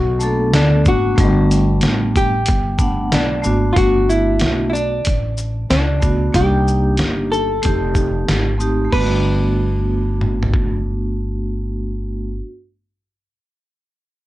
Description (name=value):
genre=hip hop, jazz-hop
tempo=93 BPM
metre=4/4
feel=swing 65% on 16ths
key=G major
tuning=A4 = 440 Hz
part: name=vintage hollow-body jazz guitar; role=melody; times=0.0-12.4 s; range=D4 to B4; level=-20 LUFS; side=left 1 dB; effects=cassette tape
part: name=upright bass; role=bass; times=0.0-12.4 s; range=F1 to D2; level=-19 LUFS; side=equal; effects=none
part: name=vibraphone with medium hard mallets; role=accompaniment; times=0.2-12.5 s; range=G3 to F#5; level=-21 LUFS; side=right 1 dB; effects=cassette tape
part: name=trip hop sampler-style drum kit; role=drums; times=0.2-10.7 s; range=crash cymbal, hi-hat, kick drum, shaker, snare drum, toms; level=-19 LUFS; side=equal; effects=cassette tape
room=little or no reverb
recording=home recording on cassette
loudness=-15 LUFS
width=side -16 dB against mid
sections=0.0-3.8 A section; 3.8-8.9 B section; 8.9-11.5 C section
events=none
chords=0.0 Gmaj7; 6.3 Cm7; 7.6 F7; 8.9 Gmaj7